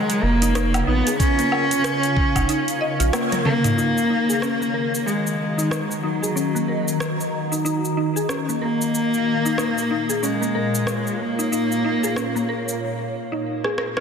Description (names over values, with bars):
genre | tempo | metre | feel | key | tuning
organic downtempo | 93 BPM | 4/4 | swing 59% on 16ths | Eb minor | A4 = 440 Hz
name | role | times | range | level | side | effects
rich cello | melody | 0.0-12.8 s | Gb3 to Db4 | -22 LUFS | equal | tape echo
ethereal airy pad | sustained chords | 0.0-12.8 s | Bb2 to Bb5 | -27 LUFS | equal | ensemble chorus, built-in reverb, phaser, sidechain pumping
mallet-like synth pluck | arpeggios | 0.0-14.0 s | Bb3 to Eb5 | -26 LUFS | left 1 dB | ensemble chorus, ping-pong delay
afro-pop drum kit | drums | 0.1-14.0 s | hi-hat, rim click, shaker, toms, woodblock | -27 LUFS | equal | soft clipping on snare
warm sub bass | bass | 0.2-3.1 s | F1 to Bb1 | -21 LUFS | equal | none
electronic kick drum | drums | 1.2-2.5 s | none | -20 LUFS | equal | none
room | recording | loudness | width
moderate lush hall reverb, RT60 2.4 s | dense, heavily limited modern master | -19 LUFS | side -6 dB against mid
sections
0.0-3.8 A section; 3.8-14.0 B section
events
band accent 3.1-3.5; drum fill 3.3-3.8, 13.6-14.0; filter sweep on synth pluck 3.8-14.0; filter sweep on ambient pad 3.8-14.0; break 12.8-14.0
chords
0.0 Bbm; 3.8 Ebm; 8.9 Bbm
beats
0.55 | 1.20 1.84 2.49 3.13 | 3.78 4.42 5.07 5.71 | 6.36 7.00 7.65 8.29 | 8.94 9.58 10.23 10.87 | 11.52 12.16 12.81 13.46